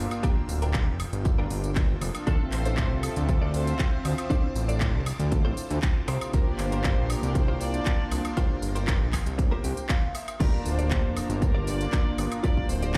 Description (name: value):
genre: nu-disco, nu disco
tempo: 118 BPM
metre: 4/4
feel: straight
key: G dorian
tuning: A4 = 443 Hz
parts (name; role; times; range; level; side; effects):
- warm analog pad; accompaniment; 0.0-12.6 s; Bb3 to A5; -36 LUFS; equal; chorus, slapback echo
- string machine, full ensemble; sustained chords; 0.0-13.0 s; Bb3 to E6; -45 LUFS; equal; none
- fat analog bass; bass; 0.0-13.0 s; D1 to D2; -30 LUFS; equal; none
- house drum kit; drums; 0.1-13.0 s; crash cymbal, handclaps, hi-hat, tambourine, woodblock; -38 LUFS; equal; none
- direct-recorded clean electric guitar; riff; 0.2-13.0 s; D4 to G5; -38 LUFS; equal; ensemble chorus, slapback echo
- electronic kick drum; drums; 0.2-13.0 s; none; -28 LUFS; equal; none
- warm studio violin section; melody; 2.3-13.0 s; A4 to D5; -40 LUFS; equal; tape echo
room: little or no reverb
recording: played on a big sound system in a bare room, large studio reverb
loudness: -26 LUFS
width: mono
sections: 0.0-10.4 A section; 10.4-13.0 A section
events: drop 0.0-10.4, 10.4-13.0; clean electric guitar fill 9.4-10.4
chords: 0.0 Gm7; 2.3 Dm7; 6.1 C7sus4; 10.4 Gm7